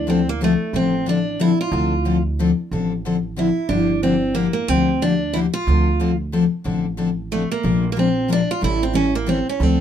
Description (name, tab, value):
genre	acoustic string swing (jazz manouche)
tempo	183 BPM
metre	3/4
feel	swing 59% on 8ths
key	D minor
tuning	A4 = 440 Hz
part	picked steel-string acoustic guitar	melody	0.0-9.8 s	A3 to F4	-21 LUFS	right 3 dB	none
part	upright bass	bass	0.0-9.8 s	G1 to D2	-23 LUFS	right 2 dB	none
part	picked steel-string acoustic guitar	accompaniment	0.1-9.8 s	D3 to Bb4	-20 LUFS	left 5 dB	none
room	light reverb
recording	minimal, uncompressed stereo recording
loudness	-17 LUFS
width	side -9 dB against mid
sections	0.0-9.8 A section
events	none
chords	0.0 Dm7; 3.7 Gm7; 5.7 Dm7; 7.6 Bb7; 8.6 A7